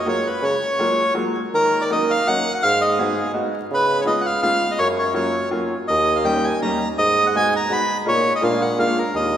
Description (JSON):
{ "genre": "musette waltz", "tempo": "165 BPM", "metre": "3/4", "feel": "swing 54% on 8ths, rubato", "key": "Eb minor", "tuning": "A4 = 440 Hz", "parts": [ { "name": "bandoneon", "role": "melody", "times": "0.0-9.4 s", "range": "Ab4 to Cb6", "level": "-19 LUFS", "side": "equal", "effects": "none" }, { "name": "mellow bassoon", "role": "bass", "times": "0.0-9.4 s", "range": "Eb2 to Eb3", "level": "-24 LUFS", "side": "equal", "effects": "none" }, { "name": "clear upright piano", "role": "accompaniment", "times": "0.1-9.0 s", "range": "F#3 to Gb4", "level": "-24 LUFS", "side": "equal", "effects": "none" } ], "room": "wet church reverb, RT60 3.0 s", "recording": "recorded in a church or concert hall, vinyl crackle", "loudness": "-17 LUFS", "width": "side -10 dB against mid", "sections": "0.0-1.5 A section; 1.5-9.4 B section", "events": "none", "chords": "0.0 F#maj9; 1.5 Ebm7; 2.6 Abm7; 3.7 Db7; 4.8 Gbmaj7; 5.9 Eb7; 7.0 Abm7; 8.1 Bb7sus4; 8.4 Bb7", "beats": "0.07 | 0.43 0.80 1.17 | 1.55 1.91 2.27 | 2.63 2.99 3.35 | 3.70 4.06 4.43 | 4.79 5.15 5.52 | 5.89 6.26 6.62 | 6.99 7.35 7.71 | 8.07 8.43 8.79 | 9.14" }